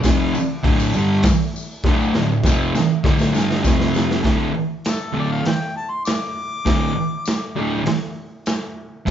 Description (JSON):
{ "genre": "garage rock duo or trio", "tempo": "100 BPM", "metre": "4/4", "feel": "straight", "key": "D minor", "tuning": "A4 = 441 Hz", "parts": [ { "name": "thick fuzz guitar", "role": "riff", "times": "0.0-9.1 s", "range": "D2 to G3", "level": "-19 LUFS", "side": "right 1 dB", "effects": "distortion" }, { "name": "raw garage drum kit", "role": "drums", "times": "0.0-9.1 s", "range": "hi-hat, kick drum, snare drum", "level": "-21 LUFS", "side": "equal", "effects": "none" }, { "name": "tambourine", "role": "percussion", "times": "0.0-8.6 s", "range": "none", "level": "-36 LUFS", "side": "left 6 dB", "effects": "none" }, { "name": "warm harmonica", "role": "melody", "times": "4.9-7.8 s", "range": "A4 to D6", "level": "-27 LUFS", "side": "left 3 dB", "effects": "overdrive" } ], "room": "light reverb", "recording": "band playing live in one room, nothing above 7.6 kHz", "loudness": "-17 LUFS", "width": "side -10 dB against mid", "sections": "0.0-4.2 A section; 4.2-9.1 B section", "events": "drum fill 1.8-4.2", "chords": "0.0 Dm; 3.6 F5; 4.2 D5", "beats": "0.04 0.64 1.24 | 1.84 2.44 3.04 3.64 | 4.24 4.84 5.45 6.05 | 6.65 7.26 7.86 8.46 | 9.07" }